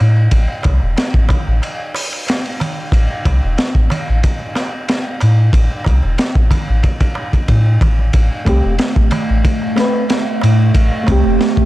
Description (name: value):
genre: trip hop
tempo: 92 BPM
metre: 4/4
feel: straight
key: A minor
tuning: A4 = 440 Hz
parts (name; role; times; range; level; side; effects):
- soft dub sub bass; bass; 0.0-11.7 s; E1 to A2; -12 LUFS; equal; none
- darbuka; percussion; 0.0-11.7 s; none; -27 LUFS; right 2 dB; none
- crunchy breakbeat drum kit; drums; 0.3-11.7 s; hi-hat, kick drum, ride cymbal, snare drum; -16 LUFS; equal; none
- warbly tape-like pad; sustained chords; 8.8-11.7 s; A3; -19 LUFS; right 3 dB; chorus, built-in reverb, phaser
- reed electric piano; accompaniment; 8.5-11.7 s; A3 to B4; -20 LUFS; left 1 dB; overdrive, harmonic tremolo, tape echo
room: small room ambience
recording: dark, warm production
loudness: -12 LUFS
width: side -16 dB against mid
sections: 0.0-11.7 A section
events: none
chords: 0.0 N.C.; 8.1 Am7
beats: | 0.32 0.97 1.62 2.27 | 2.92 3.58 4.23 4.88 | 5.53 6.18 6.84 7.49 | 8.14 8.79 9.45 10.10 | 10.75 11.40